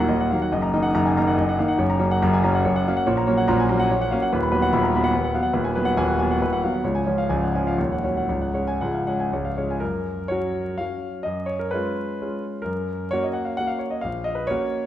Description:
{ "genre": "classical, romantic triple-time dance for piano with dotted rhythms", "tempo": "112-150 BPM", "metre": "3/4", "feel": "rubato", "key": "F# major from 4.3 s", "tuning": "A4 = 439 Hz", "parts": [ { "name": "clear concert grand piano", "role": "solo", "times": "0.0-14.9 s", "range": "C#1 to B5", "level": "-20 LUFS", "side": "equal", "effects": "none" } ], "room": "moderate scoring stage reverb, RT60 1.6 s", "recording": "minimal, uncompressed stereo recording, vinyl crackle", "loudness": "-20 LUFS", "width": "side -12 dB against mid", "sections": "0.0-9.8 A section; 9.8-14.9 B section", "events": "none", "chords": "0.0 Ebm; 0.5 Ebm/Gb; 1.8 Gb; 3.1 Gb/Bb; 4.3 B/D#; 5.5 G#m7/D#; 6.9 C#; 7.8 D#m7; 8.3 C#sus4; 9.3 C#; 9.8 F#; 11.3 C#7/F#; 12.7 F#; 14.0 F#/A#", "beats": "0.09 | 0.52 0.95 1.39 | 1.80 2.22 2.65 | 3.07 3.48 3.90 | 4.31 4.72 5.13 | 5.54 5.96 6.42 | 6.86 7.30 7.79 | 8.28 8.80 9.32 | 9.81 10.31 10.81 | 11.27 11.74 12.22 | 12.66 13.12 13.59 | 14.03 14.48" }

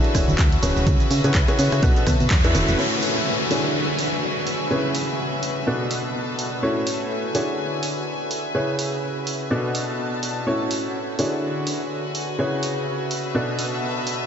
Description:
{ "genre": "piano house", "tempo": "125 BPM", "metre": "4/4", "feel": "swing 57% on 16ths", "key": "unclear", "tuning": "A4 = 441 Hz", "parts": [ { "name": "clear upright piano", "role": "riff", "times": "0.0-14.3 s", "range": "A2 to F#5", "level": "-24 LUFS", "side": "equal", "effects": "sidechain pumping, low-pass filter, ping-pong delay" }, { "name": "punchy analog drum machine", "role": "drums", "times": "0.0-14.2 s", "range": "crash cymbal, handclaps, hi-hat, rim click, shaker", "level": "-28 LUFS", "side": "right 1 dB", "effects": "none" }, { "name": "tambourine and congas", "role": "percussion", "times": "0.0-2.8 s", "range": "none", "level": "-30 LUFS", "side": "right 2 dB", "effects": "none" }, { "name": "rich studio string section", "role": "texture", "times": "0.0-14.3 s", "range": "D3 to A5", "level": "-28 LUFS", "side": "left 1 dB", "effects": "sidechain pumping" }, { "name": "solid FM bass", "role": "bass", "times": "0.1-2.8 s", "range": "D1 to C#3", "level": "-22 LUFS", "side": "equal", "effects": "sidechain pumping" }, { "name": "electronic kick drum", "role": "drums", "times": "0.1-2.4 s", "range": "none", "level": "-19 LUFS", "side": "equal", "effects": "none" }, { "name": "downlifter", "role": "sound effects", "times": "2.8-6.6 s", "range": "none", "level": "-29 LUFS", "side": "left 1 dB", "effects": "none" } ], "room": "moderate huge ambient reverb, RT60 7.3 s", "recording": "dreamy mix soaked in reverb, nothing above 7.7 kHz", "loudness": "-20 LUFS", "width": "side -8 dB against mid", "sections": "0.0-2.8 A section; 2.8-14.3 B section", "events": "band accent 2.3", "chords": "0.0 Dmaj9#11; 0.9 C#m7; 1.8 Bm7; 2.3 E7; 2.8 A6; 3.5 Dmaj9#11; 4.7 C#m7; 5.7 Bm7; 6.6 A6; 7.3 Dmaj9#11; 8.5 C#m7; 9.5 Bm7; 10.5 A6; 11.2 Dmaj9#11; 12.4 C#m7; 13.3 Bm7", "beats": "0.39 | 0.87 1.35 1.83 2.31 | 2.79 3.27 3.75 4.23 | 4.71 5.19 5.67 6.15 | 6.63 7.11 7.59 8.07 | 8.55 9.03 9.51 9.99 | 10.47 10.95 11.43 11.91 | 12.39 12.87 13.35 13.83" }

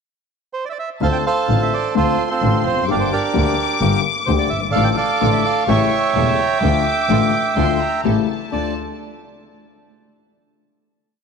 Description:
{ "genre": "tango", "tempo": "128 BPM", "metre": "4/4", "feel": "rubato", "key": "D minor", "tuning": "A4 = 439 Hz", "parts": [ { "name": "bandoneon", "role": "melody", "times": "0.5-8.7 s", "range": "C4 to G5", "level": "-19 LUFS", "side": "right 5 dB", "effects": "none" }, { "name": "clear studio violin section", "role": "second line", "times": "1.0-8.7 s", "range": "A5 to D6", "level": "-26 LUFS", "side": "left 9 dB", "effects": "none" }, { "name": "warm concert grand piano", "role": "accompaniment", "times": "1.0-8.7 s", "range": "E1 to G4", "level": "-21 LUFS", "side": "left 10 dB", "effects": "none" }, { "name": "dark double bass", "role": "bass", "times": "1.0-8.7 s", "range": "E1 to D2", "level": "-22 LUFS", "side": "right 2 dB", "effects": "none" }, { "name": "clear symphonic string section", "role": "stabs", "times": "4.7-8.7 s", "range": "C#4 to A4", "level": "-30 LUFS", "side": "right 11 dB", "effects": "none" } ], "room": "moderate plate reverb, RT60 2.8 s", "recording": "1960s-style stereo with parts hard left and right", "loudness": "-15 LUFS", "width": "side -6 dB against mid", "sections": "0.0-1.0 pickup bar; 1.0-8.5 A section; 8.5-10.4 final chord", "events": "none", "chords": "0.0 N.C.; 1.0 Dm7; 2.9 Gm; 4.7 Dm/A; 5.7 A7; 6.6 Dm; 8.0 A7; 8.5 Dm", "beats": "0.07 0.54 | 1.01 1.48 1.95 2.42 | 2.88 3.34 3.81 4.27 | 4.74 5.21 5.68 6.15 | 6.62 7.09 7.57 8.05 | 8.52" }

